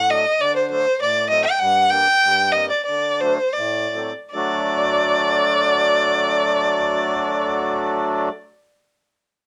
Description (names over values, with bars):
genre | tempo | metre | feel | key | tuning
klezmer | 75-99 BPM | 2/4 | straight | unclear | A4 = 440 Hz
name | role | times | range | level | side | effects
rich violin | melody | 0.0-8.3 s | C5 to G5 | -20 LUFS | equal | none
accordion | accompaniment | 0.0-8.3 s | G2 to D4 | -25 LUFS | equal | cassette tape
room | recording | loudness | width
moderate studio ambience, RT60 0.5 s | home recording on cassette | -19 LUFS | mono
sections
0.0-4.3 A section; 4.3-7.5 B section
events
slowing down 1.6-4.3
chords
0.0 D; 1.6 Gm; 2.9 D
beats
| 0.40 1.00 | 1.61 2.22 | 2.86 3.55 | 4.30 5.11 | 5.91 6.71